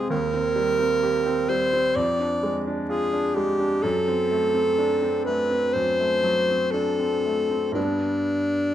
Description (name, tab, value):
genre	classical, romantic duo for alto saxophone and grand piano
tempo	57-65 BPM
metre	4/4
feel	rubato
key	unclear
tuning	A4 = 435 Hz
part	warm alto saxophone	melody	0.0-8.7 s	D4 to D5	-22 LUFS	equal	none
part	clear grand piano	accompaniment	0.0-8.7 s	Eb2 to G4	-26 LUFS	right 1 dB	none
room	moderate recital hall reverb, RT60 1.4 s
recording	none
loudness	-21 LUFS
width	side -11 dB against mid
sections	0.0-8.7 A section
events	none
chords	0.1 Cm/Eb; 2.0 Ddim/F; 3.8 D7/F#; 7.8 G